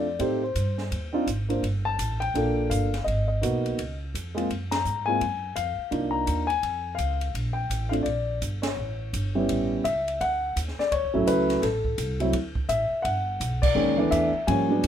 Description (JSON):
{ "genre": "jazz piano trio", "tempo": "168 BPM", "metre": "4/4", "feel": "swing 62% on 8ths", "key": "D major from 10.2 s", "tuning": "A4 = 439 Hz", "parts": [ { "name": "dark baby grand piano", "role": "melody", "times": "0.0-14.9 s", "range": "Eb3 to Bb5", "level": "-25 LUFS", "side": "left 1 dB", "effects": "none" }, { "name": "upright bass", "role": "bass", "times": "0.0-14.9 s", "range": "G1 to A2", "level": "-30 LUFS", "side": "right 1 dB", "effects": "none" }, { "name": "open jazz drum kit", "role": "drums", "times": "0.2-14.9 s", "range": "crash cymbal, hi-hat, kick drum, ride cymbal, snare drum", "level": "-34 LUFS", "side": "right 2 dB", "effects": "none" } ], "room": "light reverb", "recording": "minimal, uncompressed stereo recording", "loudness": "-24 LUFS", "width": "side -9 dB against mid", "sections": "0.0-10.2 A section; 10.2-14.9 B section", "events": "band accent 4.7, 8.6, 13.6", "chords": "0.2 Am7b5; 0.9 Ab; 1.6 Gm9; 3.1 Abm7; 3.8 Db; 4.5 Gbmaj9; 5.9 Cm11; 6.6 Db; 7.3 Bbmaj7; 8.8 A7; 10.2 Dmaj7; 11.6 Am; 12.3 D5; 13.1 G69" }